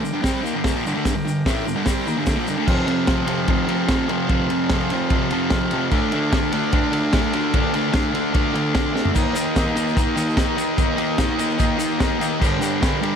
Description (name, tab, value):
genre	garage rock duo or trio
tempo	148 BPM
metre	4/4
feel	straight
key	unclear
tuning	A4 = 443 Hz
part	combo organ	sustained chords	0.0-13.2 s	F4 to A5	-30 LUFS	equal	spring reverb
part	fuzz guitar	riff	0.0-13.2 s	F2 to Eb4	-20 LUFS	equal	distortion
part	tube shaker	percussion	0.1-2.6, 9.2-12.9 s	none	-37 LUFS	left 6 dB	none
part	crunchy breakbeat drum kit	drums	0.2-13.1 s	crash cymbal, hi-hat, kick drum, ride cymbal, snare drum, toms	-22 LUFS	equal	none
room	little or no reverb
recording	none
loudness	-18 LUFS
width	side -7 dB against mid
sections	0.0-2.7 A section; 2.7-13.2 B section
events	transistor combo organ fill 5.1-5.9; drum fill 8.9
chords	0.0 Gm; 2.7 F; 5.9 Dm; 9.2 Eb; 12.4 Gm